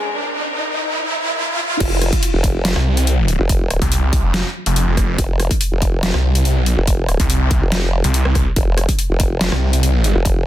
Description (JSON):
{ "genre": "heavy wobble dubstep", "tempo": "142 BPM", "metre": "4/4", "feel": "half-time", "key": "unclear", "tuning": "A4 = 440 Hz", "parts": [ { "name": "clear symphonic string section", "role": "sustained chords", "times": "0.0-1.8 s", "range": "F3 to Bb4", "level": "-29 LUFS", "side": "left 3 dB", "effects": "sidechain pumping" }, { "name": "riser", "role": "sound effects", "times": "0.0-1.8 s", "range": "none", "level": "-20 LUFS", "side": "right 1 dB", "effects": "none" }, { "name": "formant-sweep wobble bass", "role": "bass", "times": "1.8-10.5 s", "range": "F1", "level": "-18 LUFS", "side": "equal", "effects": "chorus, overdrive" }, { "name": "dubstep drum kit", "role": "drums", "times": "1.8-10.3 s", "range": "crash cymbal, hi-hat, rim click, snare drum", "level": "-22 LUFS", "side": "left 1 dB", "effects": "overdrive, high-pass filter on hats, high-pass filter on cymbals, high-pass filter on snare" }, { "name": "electronic kick drum", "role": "drums", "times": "1.8-10.3 s", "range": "none", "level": "-19 LUFS", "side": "equal", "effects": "overdrive" }, { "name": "snarling distorted saw bass", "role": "bass", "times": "2.8-10.1 s", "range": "F1 to C2", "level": "-15 LUFS", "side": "equal", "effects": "distortion, overdrive" } ], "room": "digital ambience", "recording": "dense, heavily limited modern master, high-pass filter", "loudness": "-15 LUFS", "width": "side -13 dB against mid", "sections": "0.0-1.8 A section; 1.8-10.5 B section", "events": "build-up 0.0-1.8; riser 0.0-1.8; drop 1.8-10.5", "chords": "0.0 F5" }